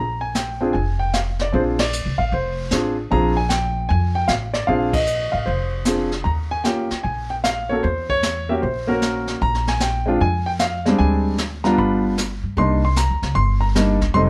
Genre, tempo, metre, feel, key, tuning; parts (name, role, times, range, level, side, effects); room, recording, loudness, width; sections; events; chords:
jazz piano trio; 152 BPM; 4/4; swing 66% on 8ths; Bb mixolydian; A4 = 441 Hz
warm baby grand piano; melody; 0.0-14.3 s; G3 to C6; -23 LUFS; equal
upright bass; bass; 0.0-14.3 s; F1 to G2; -25 LUFS; equal
jazz brush drum kit; drums; 0.3-14.3 s; brushed snare drum, hi-hat, kick drum, ride cymbal, snare drum; -29 LUFS; equal
light reverb; -20 LUFS; mono
0.0-14.3 A section
band accent 1.7, 4.9
0.0 Bb9; 6.3 Eb9; 7.8 Edim7(no3); 9.4 Bb7(no3); 11.0 D7(b5, no3); 11.8 G7; 12.6 Cm7